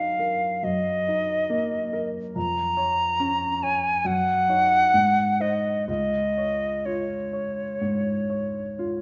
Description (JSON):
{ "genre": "classical, romantic duo for flute and grand piano", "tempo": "61-71 BPM", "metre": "4/4", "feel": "rubato", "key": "Db major", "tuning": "A4 = 440 Hz", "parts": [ { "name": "silver concert flute", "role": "melody", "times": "0.0-9.0 s", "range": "Db5 to Bb5", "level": "-25 LUFS", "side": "equal", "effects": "none" }, { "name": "clear grand piano", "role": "accompaniment", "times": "0.0-9.0 s", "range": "Db2 to Db5", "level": "-31 LUFS", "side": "equal", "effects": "none" } ], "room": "moderate scoring stage reverb, RT60 1.7 s", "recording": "nothing above 7.5 kHz", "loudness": "-24 LUFS", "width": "mono", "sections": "0.0-9.0 A section", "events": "none", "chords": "0.0 Ebm/Gb; 2.4 Db/F; 4.1 Ebm7/Gb; 4.9 Ab7; 5.9 Db" }